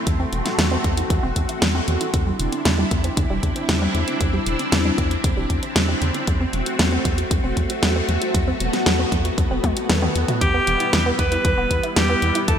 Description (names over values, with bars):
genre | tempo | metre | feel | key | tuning
synthwave | 116 BPM | 4/4 | straight | unclear | A4 = 440 Hz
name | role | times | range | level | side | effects
string machine, full ensemble | sustained chords | 0.0-12.6 s | G3 to F#4 | -24 LUFS | equal | phaser, ensemble chorus, sidechain pumping
analog pluck | arpeggios | 0.1-12.6 s | D3 to F#4 | -28 LUFS | right 2 dB | chorus, digital delay
round analog bass | bass | 0.1-12.6 s | E1 to E2 | -23 LUFS | equal | tube saturation, sidechain pumping
electronic kick drum | drums | 0.1-12.6 s | none | -23 LUFS | equal | small room ambience
pop drum kit | drums | 0.1-12.6 s | hi-hat, snare drum, toms | -24 LUFS | equal | small room ambience
edgy alto saxophone | melody | 10.4-12.6 s | G4 to B4 | -20 LUFS | equal | ping-pong delay
room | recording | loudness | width
moderate lush hall reverb, RT60 2.5 s | bright 1980s-style digital production | -18 LUFS | side -8 dB against mid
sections
0.0-12.6 A section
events
filter sweep on synth arpeggio sound 0.0-12.6; drum fill 9.6-10.4; kick drops out 9.9-10.4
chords
0.0 Am/E; 2.1 Cadd9/E; 6.3 F#dim/E; 10.4 Em